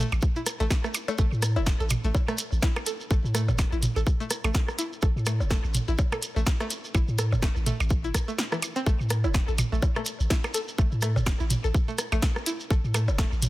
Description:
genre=minimal techno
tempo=125 BPM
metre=4/4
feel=swing 57% on 16ths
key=unclear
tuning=A4 = 440 Hz
part: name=string-like resonator pluck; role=riff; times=0.0-13.3 s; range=E3 to A4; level=-34 LUFS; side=equal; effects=chorus, cassette tape, sidechain pumping, digital delay
part: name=punchy sub bass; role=bass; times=0.0-13.5 s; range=E1 to A2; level=-26 LUFS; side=equal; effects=sidechain pumping
part: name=minimal click drum kit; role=percussion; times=0.1-13.5 s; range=percussion blips, rim click, toms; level=-31 LUFS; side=right 1 dB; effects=overdrive, tape echo
part: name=shekere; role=percussion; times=0.1-13.5 s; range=none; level=-37 LUFS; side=right 2 dB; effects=none
part: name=electronic kick drum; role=drums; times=0.2-13.3 s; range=none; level=-24 LUFS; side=equal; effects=none
part: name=punchy analog drum machine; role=drums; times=0.5-13.5 s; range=hi-hat, snare drum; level=-32 LUFS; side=left 1 dB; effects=overdrive
room=digital ambience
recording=dense, heavily limited modern master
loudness=-24 LUFS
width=side -17 dB against mid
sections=0.0-13.5 A section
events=kick drops out 8.4-8.9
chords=0.0 A5

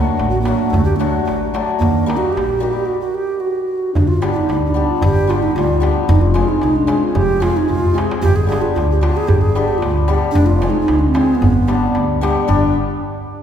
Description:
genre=balkan folk, Balkan wedding band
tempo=112 BPM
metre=2/4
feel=straight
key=G phrygian dominant from 4.0 s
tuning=A4 = 440 Hz
part: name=bright bass ocarina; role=melody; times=0.0-12.7 s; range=A3 to Ab4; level=-18 LUFS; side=right 2 dB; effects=tape echo
part: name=hammered dulcimer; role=accompaniment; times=0.0-12.7 s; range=F#3 to Ab4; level=-20 LUFS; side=left 4 dB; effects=none
part: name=upright bass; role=bass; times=0.2-12.7 s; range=F1 to Eb2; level=-19 LUFS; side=equal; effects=none
part: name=darbuka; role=percussion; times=0.2-12.7 s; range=none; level=-21 LUFS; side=right 1 dB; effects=none
room=wet concert hall reverb, RT60 2.3 s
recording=heard from further back in the room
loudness=-14 LUFS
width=side -9 dB against mid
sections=0.0-4.0 A section; 4.0-12.5 B section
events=stop 2.9-4.0; drum fill 7.7-8.2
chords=0.0 D; 1.8 Eb; 2.9 N.C.; 4.0 G; 6.1 Fm; 8.2 G; 10.4 Fm; 11.4 G

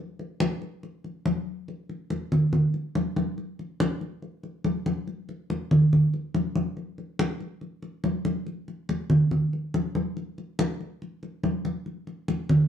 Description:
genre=jazz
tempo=141 BPM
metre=4/4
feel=straight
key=none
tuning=none
part: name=congas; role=percussion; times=0.2-12.7 s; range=none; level=-24 LUFS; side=equal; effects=none
room=wet studio reverb, RT60 0.7 s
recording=band playing live in one room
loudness=-24 LUFS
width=side -9 dB against mid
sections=0.0-1.7 A section; 1.7-12.7 A section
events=none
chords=none

